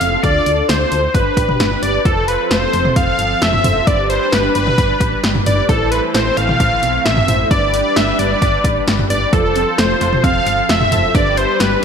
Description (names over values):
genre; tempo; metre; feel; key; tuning
synth-pop; 132 BPM; 4/4; straight; unclear; A4 = 439 Hz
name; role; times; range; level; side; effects
wide unison lead; melody; 0.0-11.8 s; A4 to F5; -16 LUFS; equal; none
mellow synth brass; accompaniment; 0.0-11.8 s; C4 to C5; -23 LUFS; right 1 dB; chorus
solid FM bass; bass; 0.0-11.8 s; F1 to D2; -21 LUFS; equal; none
punchy analog drum machine; drums; 0.0-11.7 s; hi-hat, kick drum, snare drum, toms; -18 LUFS; equal; overdrive, gated reverb
lush unison pad; sustained chords; 2.1-11.8 s; E3 to B4; -24 LUFS; equal; chorus
analog pluck; arpeggios; 9.3-11.7 s; D3 to A5; -24 LUFS; equal; chorus, digital delay
room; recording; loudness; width
moderate lush hall reverb, RT60 1.8 s; bright 1980s-style digital production; -12 LUFS; side -7 dB against mid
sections
0.0-2.1 A section; 2.1-11.8 B section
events
none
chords
0.2 Dm; 1.1 G; 2.1 F; 3.9 G; 5.7 Am; 7.5 G; 9.3 F; 11.1 G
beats
| 0.24 0.69 1.15 1.60 | 2.06 2.51 2.96 3.42 | 3.87 4.33 4.78 5.24 | 5.69 6.15 6.60 7.05 | 7.51 7.96 8.42 8.87 | 9.33 9.78 10.24 10.69 | 11.15 11.60